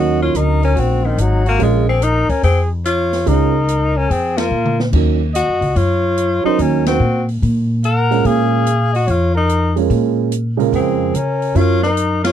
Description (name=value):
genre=jazz, small-group swing and bop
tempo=145 BPM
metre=4/4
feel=swing 66% on 8ths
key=Bb minor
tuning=A4 = 435 Hz
part: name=warm tenor saxophone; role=melody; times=0.0-12.3 s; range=Eb3 to Bb4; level=-18 LUFS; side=left 5 dB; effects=none
part: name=breathy trumpet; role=second line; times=0.0-12.3 s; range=C4 to Gb5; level=-23 LUFS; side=right 4 dB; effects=none
part: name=warm grand piano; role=accompaniment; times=0.0-11.8 s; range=Db3 to Bb4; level=-18 LUFS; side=right 18 dB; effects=none
part: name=upright bass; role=bass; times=0.0-12.3 s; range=Ab1 to Db3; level=-17 LUFS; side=left 1 dB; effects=none
part: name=open jazz drum kit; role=drums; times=0.3-12.3 s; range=crash cymbal, hi-hat, kick drum, ride cymbal, snare drum, toms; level=-25 LUFS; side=equal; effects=none
room=little or no reverb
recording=dry, close 1970s-style studio recording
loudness=-13 LUFS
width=side -10 dB against mid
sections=0.0-12.3 A section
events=band accent 4.3, 6.8; drum fill 4.5-4.9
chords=0.0 Ebm7; 1.6 Bbm7; 4.9 Ebm7; 8.2 Bbm7; 11.6 Gbmaj7